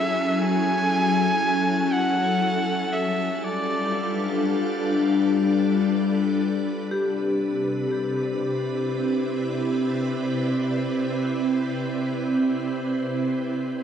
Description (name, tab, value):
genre	ambient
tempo	free time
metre	none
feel	none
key	unclear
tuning	A4 = 440 Hz
part	warm electric violin	melody	0.0-4.4 s	D5 to G#5	-25 LUFS	right 1 dB	analog delay
part	soft additive organ-like pad	sustained chords	0.0-13.8 s	C3 to D5	-23 LUFS	left 1 dB	ensemble chorus, built-in reverb
part	vibraphone with medium hard mallets	arpeggios	6.9-13.8 s	G4	-30 LUFS	left 2 dB	analog delay
room	wet plate reverb, RT60 2.4 s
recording	echo-heavy mix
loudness	-21 LUFS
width	side -8 dB against mid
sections	0.0-6.9 A section; 6.9-13.8 B section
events	none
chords	0.0 F#m9; 2.9 G7; 6.9 Cmaj7